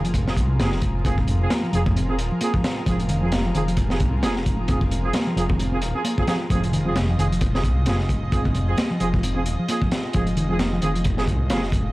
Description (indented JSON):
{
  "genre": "breakbeat, breaks",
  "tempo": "132 BPM",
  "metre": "4/4",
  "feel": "swing 58% on 16ths",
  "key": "F minor pentatonic",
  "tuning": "A4 = 440 Hz",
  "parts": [
    { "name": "lush unison pad", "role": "sustained chords", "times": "0.0-11.9 s", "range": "F3 to Eb5", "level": "-33 LUFS", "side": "equal", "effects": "chorus, sidechain pumping" },
    { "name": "hollow-body short-scale picked electric bass", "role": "riff", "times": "0.0-11.6 s", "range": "Eb3 to C4", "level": "-26 LUFS", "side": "equal", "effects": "vintage 12-bit sampler grit, digital delay" },
    { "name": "phased detuned saw bass", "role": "bass", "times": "0.0-11.9 s", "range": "Eb1 to C2", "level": "-24 LUFS", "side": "equal", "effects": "phaser" },
    { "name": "crunchy breakbeat drum kit", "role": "drums", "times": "0.0-11.9 s", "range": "hi-hat, kick drum, snare drum", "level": "-24 LUFS", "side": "equal", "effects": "none" },
    { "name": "warm brass ensemble", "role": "stabs", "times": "0.3-11.6 s", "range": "C4 to Ab4", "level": "-30 LUFS", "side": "right 2 dB", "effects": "digital delay" },
    { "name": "congas", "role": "percussion", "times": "1.3-10.7 s", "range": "none", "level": "-34 LUFS", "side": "right 1 dB", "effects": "none" }
  ],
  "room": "light reverb, studio reverb",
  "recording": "dark, warm production, vinyl crackle",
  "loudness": "-19 LUFS",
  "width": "side -19 dB against mid",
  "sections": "0.0-11.9 A section",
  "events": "none",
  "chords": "0.0 Fm",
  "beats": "0.14 0.59 | 1.05 1.50 1.96 2.41 | 2.87 3.32 3.77 4.23 | 4.68 5.14 5.59 6.05 | 6.50 6.96 7.41 7.87 | 8.32 8.78 9.23 9.68 | 10.14 10.59 11.05 11.50"
}